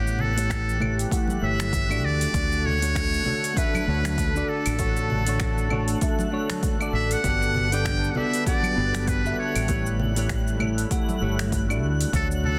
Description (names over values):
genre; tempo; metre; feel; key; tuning
sunset chillout; 98 BPM; 4/4; swing 57% on 16ths; D major; A4 = 440 Hz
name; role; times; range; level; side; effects
trumpet with metal mute; melody; 0.0-12.6 s; G4 to G5; -30 LUFS; equal; delay
clean electric guitar; accompaniment; 0.0-12.6 s; A3 to F#5; -32 LUFS; equal; low-pass filter, tape echo
lush unison pad; sustained chords; 0.0-12.6 s; D3 to A4; -34 LUFS; equal; chorus
fretless electric bass; bass; 0.0-12.6 s; G1 to D2; -29 LUFS; equal; analog chorus
twinkling granular texture; texture; 0.0-12.6 s; F#6; -42 LUFS; equal; built-in reverb
deep house drum kit; drums; 0.1-12.4 s; cabasa, claves, finger snaps, hi-hat; -35 LUFS; equal; overdrive, soft clipping on snare
congas; percussion; 0.2-12.6 s; none; -35 LUFS; equal; none
electronic kick drum; drums; 0.5-12.3 s; none; -30 LUFS; equal; overdrive
room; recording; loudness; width
light reverb; dense, heavily limited modern master; -24 LUFS; mono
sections
0.0-12.6 A section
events
filter sweep on clean electric guitar 0.0-12.6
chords
0.0 A7; 2.0 Dmaj7; 7.2 Gmaj7; 9.7 A7; 11.8 Dmaj7